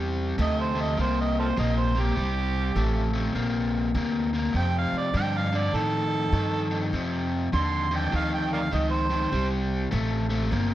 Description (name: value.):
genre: electric blues shuffle.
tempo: 101 BPM.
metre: 4/4.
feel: swing 64% on 8ths.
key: unclear.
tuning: A4 = 440 Hz.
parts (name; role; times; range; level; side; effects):
overdriven electric guitar; riff; 0.0-10.7 s; F2 to Bb3; -27 LUFS; left 2 dB; none.
upright bass; bass; 0.0-10.7 s; G1 to A2; -27 LUFS; equal; none.
overdriven harmonica; second line; 0.4-9.5 s; F4 to C6; -29 LUFS; right 4 dB; none.
room: moderate studio reverb, RT60 0.8 s.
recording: none.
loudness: -23 LUFS.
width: side -13 dB against mid.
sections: 0.0-10.7 A section.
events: harmonica solo 0.0-10.7.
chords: 0.0 C7sus2; 4.5 F9; 9.3 C7(no3).